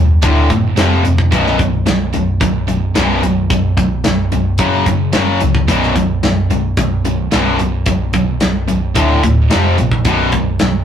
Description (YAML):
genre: hard rock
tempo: 110 BPM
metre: 4/4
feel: straight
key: unclear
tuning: A4 = 441 Hz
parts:
  - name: cranked stack guitar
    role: riff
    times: 0.0-10.8 s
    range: B1 to F#3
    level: -16 LUFS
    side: left 4 dB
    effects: overdrive
  - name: high-gain distorted guitar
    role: riff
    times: 0.0-10.8 s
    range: B1 to F#3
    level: -20 LUFS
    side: right 6 dB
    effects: distortion
  - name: hollow-body short-scale picked electric bass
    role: bass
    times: 0.0-10.8 s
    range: B0 to A#1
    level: -16 LUFS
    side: equal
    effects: none
  - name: tight metal drum kit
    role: drums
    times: 0.2-10.7 s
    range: hi-hat, kick drum, snare drum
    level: -18 LUFS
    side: right 1 dB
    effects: none
room: moderate studio reverb, RT60 0.5 s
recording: rough rehearsal-room recording, warm saturation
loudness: -12 LUFS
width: side -8 dB against mid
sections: 0.0-10.8 A section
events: none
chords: 0.2 D5; 0.8 F5; 1.3 B5; 4.6 F#5; 5.7 B5; 9.0 D5; 9.5 F5; 10.1 B5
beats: 0.23 0.78 | 1.32 1.87 2.41 2.96 | 3.50 4.05 4.59 5.14 | 5.68 6.23 6.78 7.32 | 7.87 8.41 8.96 9.51 | 10.05 10.60